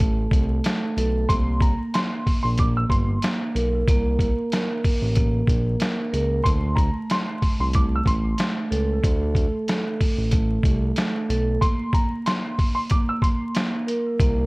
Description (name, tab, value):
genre	hip hop, boom-bap hip-hop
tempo	93 BPM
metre	4/4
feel	swing 55% on 16ths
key	unclear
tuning	A4 = 440 Hz
part	vibraphone with medium hard mallets	accompaniment	0.0-14.5 s	A3 to Bb4	-26 LUFS	right 2 dB	cassette tape, high-pass filter, low-pass filter
part	smooth synth bass	bass	0.0-14.5 s	G1 to D2	-23 LUFS	equal	none
part	trip hop sampler-style drum kit	drums	0.0-14.4 s	hi-hat, kick drum, snare drum	-22 LUFS	equal	none
part	warm upright piano	melody	1.3-13.7 s	Bb5 to E6	-28 LUFS	equal	high-pass filter, low-pass filter
room	little or no reverb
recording	worn, warbling old tape, cassette tape, vinyl crackle, warbly pitch drift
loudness	-20 LUFS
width	side -25 dB against mid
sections	0.0-11.6 A section; 11.6-14.5 A section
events	none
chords	0.0 N.C.; 1.3 C5; 6.5 D5; 11.6 C7(no3)